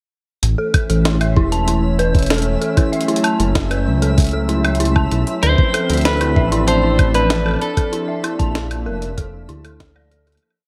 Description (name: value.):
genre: IDM.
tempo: 96 BPM.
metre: 4/4.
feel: straight.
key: unclear.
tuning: A4 = 439 Hz.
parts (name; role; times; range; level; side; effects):
hollow soft pad; sustained chords; 0.4-10.4 s; E3 to A5; -25 LUFS; equal; chorus.
dark detuned saw bass; bass; 0.4-10.4 s; E1 to D2; -21 LUFS; equal; none.
jungle sampler-style drum kit; drums; 0.4-10.6 s; hi-hat, snare drum, woodblock; -25 LUFS; equal; none.
twinkling granular texture; texture; 0.8-10.4 s; E4 to E5; -34 LUFS; equal; built-in reverb.
dark detuned synth bell; arpeggios; 0.6-10.4 s; E4 to A5; -25 LUFS; equal; chorus, tape echo.
electronic kick drum; drums; 0.7-9.9 s; none; -18 LUFS; equal; none.
clean electric guitar; melody; 5.4-9.8 s; A4 to C5; -22 LUFS; equal; vintage 12-bit sampler grit, digital delay.
room: light reverb.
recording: none.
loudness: -17 LUFS.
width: mono.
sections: 0.4-10.4 groove.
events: fade-out 7.1-10.4.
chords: 0.4 A; 2.9 F#m; 5.4 Dm7; 7.9 Bbmaj7.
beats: | 0.43 1.05 1.68 2.30 | 2.93 3.55 4.18 4.80 | 5.43 6.05 6.68 7.30 | 7.93 8.55 9.18 9.80.